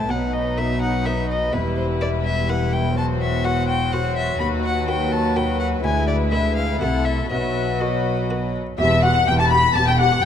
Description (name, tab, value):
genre	classical, baroque-style concerto movement with solo episodes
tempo	125 BPM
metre	3/4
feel	straight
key	E minor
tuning	A4 = 436 Hz
part	warm chamber violin section	melody	0.0-10.3 s	A4 to B5	-27 LUFS	left 6 dB	none
part	warm violin	melody	0.0-10.3 s	B4 to B5	-26 LUFS	left 3 dB	none
part	warm chamber violin section	second line	0.0-10.3 s	D#4 to B5	-26 LUFS	left 4 dB	none
part	buff-stop harpsichord	accompaniment	0.0-10.2 s	D2 to E5	-32 LUFS	equal	none
part	dark chamber viola section	accompaniment	0.0-10.1 s	F#3 to G4	-30 LUFS	equal	none
part	rich chamber cello section	bass	0.0-10.2 s	D2 to C3	-25 LUFS	right 1 dB	none
part	rich chamber double bass section	bass	0.0-10.2 s	E1 to D#2	-24 LUFS	right 1 dB	none
room	light reverb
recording	close, detailed microphones, vinyl crackle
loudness	-18 LUFS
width	side -8 dB against mid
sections	0.0-8.8 A section; 8.8-10.3 B section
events	none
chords	0.1 B; 1.5 Em; 3.0 Am6/E (rootless); 4.4 B/D#; 5.8 E7/D; 6.8 Am/C; 7.3 B; 8.8 Em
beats	| 0.10 0.58 1.06 | 1.53 2.01 2.49 | 2.97 3.44 3.92 | 4.40 4.88 5.36 | 5.84 6.33 6.82 | 7.31 7.81 8.30 | 8.79 9.28 9.76 | 10.24